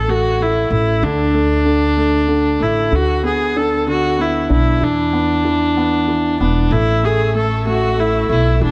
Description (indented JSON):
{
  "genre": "pop",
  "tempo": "63 BPM (dotted quarters)",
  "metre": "6/8",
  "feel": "straight",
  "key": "A major",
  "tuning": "A4 = 440 Hz",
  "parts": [
    { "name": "warm viola", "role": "melody", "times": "0.0-8.7 s", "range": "D4 to A4", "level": "-20 LUFS", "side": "equal", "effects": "tape echo" },
    { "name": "clear concert grand piano", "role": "accompaniment", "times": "0.0-8.7 s", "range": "D3 to D4", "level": "-22 LUFS", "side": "equal", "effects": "none" },
    { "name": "upright bass", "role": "bass", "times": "0.0-8.7 s", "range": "E1 to E2", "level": "-22 LUFS", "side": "equal", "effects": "none" },
    { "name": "muted studio string section", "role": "sustained chords", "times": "6.7-8.7 s", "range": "A3 to E6", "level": "-29 LUFS", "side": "equal", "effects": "none" }
  ],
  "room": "light reverb, studio reverb",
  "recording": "nothing above 10.9 kHz",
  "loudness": "-16 LUFS",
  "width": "mono",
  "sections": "0.0-8.7 A section",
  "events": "none",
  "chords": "0.0 F#m7/A; 1.0 D5; 2.9 Bm/D; 4.8 E5; 6.7 A",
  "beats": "0.07 | 1.02 1.97 | 2.92 3.87 | 4.82 5.77 | 6.71 7.66 | 8.61"
}